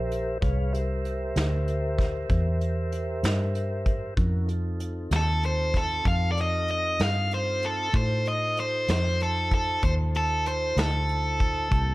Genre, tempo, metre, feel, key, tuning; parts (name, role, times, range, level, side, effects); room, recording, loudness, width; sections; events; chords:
slow blues; 64 BPM (dotted quarters); 12/8; straight; A4 = 440 Hz
mellow tonewheel organ; sustained chords; 0.0-11.9 s; Bb3 to F5; -34 LUFS; equal; slow rotary speaker
vintage muted fingered electric bass; bass; 0.0-11.9 s; Bb1 to A2; -27 LUFS; equal
vintage brush drum kit; drums; 0.1-11.9 s; hi-hat, kick drum, snare drum; -28 LUFS; equal
overdriven electric guitar; melody; 5.2-11.9 s; A4 to F5; -26 LUFS; equal; spring reverb
light reverb; -24 LUFS; side -19 dB against mid
0.0-11.9 A section
0.0 C7; 4.2 F7